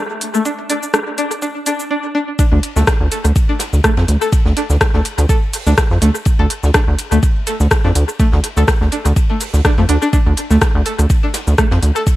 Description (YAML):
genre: minimal techno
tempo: 124 BPM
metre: 4/4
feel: swing 55% on 16ths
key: D minor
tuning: A4 = 440 Hz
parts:
  - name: minimal click drum kit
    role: drums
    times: 0.2-12.2 s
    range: cabasa, hi-hat, rim click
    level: -20 LUFS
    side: left 1 dB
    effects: dub echo
  - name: string-like resonator pluck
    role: riff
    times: 0.3-12.0 s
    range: A3 to A4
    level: -20 LUFS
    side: equal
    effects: chorus, sidechain pumping, dub echo
  - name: electronic kick drum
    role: drums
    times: 0.5-12.2 s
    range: none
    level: -15 LUFS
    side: equal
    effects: high-pass filter on kick
  - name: open jazz drum kit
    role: drums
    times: 2.4-12.2 s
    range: hi-hat, ride cymbal, snare drum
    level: -29 LUFS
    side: left 1 dB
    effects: high-pass filter on cymbals, high-pass filter on hats, high-pass filter on snare, high-pass filter on room
  - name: rubbery square bass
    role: bass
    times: 2.5-11.9 s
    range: D2 to F2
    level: -12 LUFS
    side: equal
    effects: sidechain pumping
room: light reverb, small room ambience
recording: echo-heavy mix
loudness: -12 LUFS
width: side -16 dB against mid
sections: 0.0-2.4 A section; 2.4-12.2 B section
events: build-up 0.0-2.4; filter sweep on synth pluck 0.0-2.4; drop 2.4-12.2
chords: 0.0 D5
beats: | 0.45 0.94 1.42 1.91 | 2.39 2.87 3.36 3.84 | 4.33 4.81 5.29 5.78 | 6.26 6.75 7.23 7.71 | 8.20 8.68 9.16 9.65 | 10.13 10.62 11.10 11.58 | 12.07